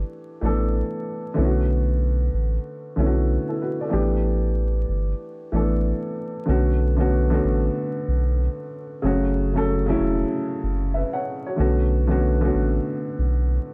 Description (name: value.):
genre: hip hop.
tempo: 94 BPM.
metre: 4/4.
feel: swing 62% on 16ths.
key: B minor.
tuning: A4 = 441 Hz.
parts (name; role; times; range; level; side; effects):
dark upright piano; accompaniment; 0.0-13.7 s; C#3 to F#5; -26 LUFS; equal; cassette tape, high-pass filter, low-pass filter.
round analog bass; bass; 0.0-13.6 s; E1 to B1; -24 LUFS; equal; none.
room: light reverb.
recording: vinyl crackle.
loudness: -23 LUFS.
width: mono.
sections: 0.0-6.5 A section; 6.5-13.7 B section.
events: none.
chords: 0.0 A9sus4; 1.4 Bm9; 3.9 A9sus4; 6.5 Bm7; 9.0 F#m; 11.6 Bm7.